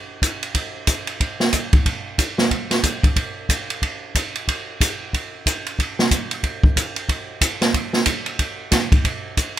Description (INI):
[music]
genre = jazz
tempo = 184 BPM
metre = 4/4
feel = swing 61% on 8ths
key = none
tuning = none
[part]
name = open jazz drum kit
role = drums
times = 0.2-9.6 s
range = hi-hat, kick drum, ride cymbal, snare drum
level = -18 LUFS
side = equal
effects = none
[sound]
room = little or no reverb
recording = close, detailed microphones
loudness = -19 LUFS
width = side -12 dB against mid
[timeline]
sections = 0.0-9.6 A section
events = none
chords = none